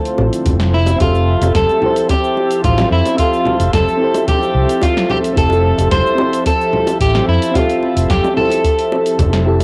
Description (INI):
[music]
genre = sunset chillout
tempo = 110 BPM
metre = 4/4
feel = straight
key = F major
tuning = A4 = 440 Hz
[part]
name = electric guitar at the edge of break-up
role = melody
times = 0.0-9.4 s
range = E4 to C5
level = -19 LUFS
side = equal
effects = cassette tape, analog delay
[part]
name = mellow FM electric piano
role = accompaniment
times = 0.0-9.6 s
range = C4 to E5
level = -22 LUFS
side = equal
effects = chorus, cassette tape
[part]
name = airy breathy pad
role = sustained chords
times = 0.0-9.6 s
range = D3 to E5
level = -26 LUFS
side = equal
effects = chorus, cassette tape
[part]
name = deep house drum kit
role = drums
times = 0.1-9.6 s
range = cabasa, congas, hi-hat, snare drum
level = -25 LUFS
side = equal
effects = overdrive, cassette tape
[part]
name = fretless electric bass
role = bass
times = 0.2-9.6 s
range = F1 to F2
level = -18 LUFS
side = equal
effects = tube saturation
[part]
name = bongos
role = percussion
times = 0.2-9.6 s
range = none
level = -26 LUFS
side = equal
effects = none
[part]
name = electronic kick drum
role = drums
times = 0.5-9.3 s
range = none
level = -21 LUFS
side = equal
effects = overdrive, cassette tape
[sound]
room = light reverb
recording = home recording on cassette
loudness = -14 LUFS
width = mono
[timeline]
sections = 0.0-9.6 A section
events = none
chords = 0.0 Dm7; 0.7 Fmaj7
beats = 0.46 | 1.00 1.55 2.10 2.64 | 3.19 3.73 4.28 4.82 | 5.37 5.91 6.46 7.00 | 7.55 8.10 8.64 9.19